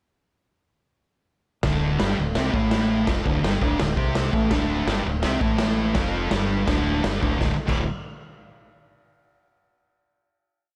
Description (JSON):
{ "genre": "garage rock duo or trio", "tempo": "166 BPM", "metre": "4/4", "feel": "straight", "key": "unclear", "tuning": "A4 = 440 Hz", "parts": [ { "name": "thick fuzz guitar", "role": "riff", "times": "1.6-7.8 s", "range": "D2 to C4", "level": "-26 LUFS", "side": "equal", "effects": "distortion" }, { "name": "growling fingered electric bass", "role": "bass", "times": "1.6-7.8 s", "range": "D1 to C2", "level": "-30 LUFS", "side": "equal", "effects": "overdrive" }, { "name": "raw garage drum kit", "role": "drums", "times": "1.6-7.8 s", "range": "crash cymbal, kick drum, snare drum", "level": "-28 LUFS", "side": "equal", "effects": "none" } ], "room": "light reverb", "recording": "none", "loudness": "-23 LUFS", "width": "mono", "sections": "1.6-7.4 riff; 7.4-8.9 final chord", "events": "none", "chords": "1.6 D5" }